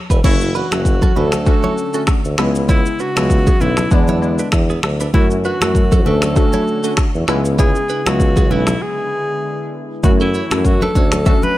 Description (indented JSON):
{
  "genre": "afrobeats",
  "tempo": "98 BPM",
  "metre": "4/4",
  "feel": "swing 55% on 16ths",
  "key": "unclear",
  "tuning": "A4 = 440 Hz",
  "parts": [
    { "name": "direct-recorded clean electric guitar", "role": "riff", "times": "0.1-11.4 s", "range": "B3 to E5", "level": "-26 LUFS", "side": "right 6 dB", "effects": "phaser, digital delay" },
    { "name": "warm tuba", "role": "bass", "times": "0.1-11.3 s", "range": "E1 to F#2", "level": "-19 LUFS", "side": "equal", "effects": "none" },
    { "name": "deep house drum kit", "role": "drums", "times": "0.1-11.6 s", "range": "crash cymbal, finger snaps, kick drum, rim click, shaker", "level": "-16 LUFS", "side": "equal", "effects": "vintage 12-bit sampler grit" },
    { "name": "breathy alto saxophone", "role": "melody", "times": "0.2-11.6 s", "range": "D4 to B4", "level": "-21 LUFS", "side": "equal", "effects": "none" },
    { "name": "glassy digital keys", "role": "accompaniment", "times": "0.2-11.6 s", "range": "G#3 to F#4", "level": "-22 LUFS", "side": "left 1 dB", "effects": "chorus" },
    { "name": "warm analog pad", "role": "sustained chords", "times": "0.2-11.6 s", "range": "C#3 to C#5", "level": "-29 LUFS", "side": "left 2 dB", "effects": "none" },
    { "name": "congas", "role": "percussion", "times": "0.2-11.6 s", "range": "none", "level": "-25 LUFS", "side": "left 2 dB", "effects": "none" }
  ],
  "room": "little or no reverb",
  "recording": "none",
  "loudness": "-13 LUFS",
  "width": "side -15 dB against mid",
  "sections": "0.2-10.0 A section; 10.0-11.6 B section",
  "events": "break 8.8-10.0",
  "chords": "0.2 F#m7; 1.2 Dmaj7; 2.4 C#m7; 3.9 E7; 5.1 F#m7; 6.1 Dmaj7; 7.3 C#m7; 8.8 E7; 10.0 F#m7; 11.0 Dmaj7"
}